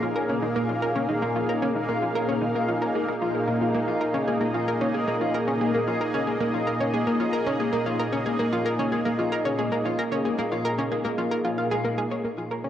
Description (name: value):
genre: ambient, sequencer-driven space music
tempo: 113 BPM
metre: 4/4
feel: straight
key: Bb minor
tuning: A4 = 440 Hz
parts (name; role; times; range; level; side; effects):
- lush unison pad; sustained chords; 0.0-12.7 s; Bb2 to F5; -26 LUFS; equal; chorus, cassette tape
- electric guitar at the edge of break-up; arpeggios; 0.0-12.2 s; Ab3 to F4; -32 LUFS; left 5 dB; auto-pan, cassette tape, ping-pong delay
- analog pluck; riff; 0.0-12.7 s; Bb3 to F5; -27 LUFS; equal; chorus, cassette tape, ping-pong delay
- bubbling stepped-filter texture; texture; 0.0-12.3 s; Bb3 to Bb4; -35 LUFS; right 2 dB; chorus, built-in reverb, cassette tape
room: wet spring reverb, RT60 2.5 s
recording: home recording on cassette, lossy compression artefacts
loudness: -23 LUFS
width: side -10 dB against mid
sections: 0.0-12.2 A section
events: none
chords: 0.0 Bbm7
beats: 0.03 0.56 1.09 | 1.62 2.15 2.69 3.22 | 3.75 4.28 4.81 5.34 | 5.87 6.40 6.93 7.46 | 7.99 8.53 9.06 9.59 | 10.12 10.65 11.18 11.71 | 12.24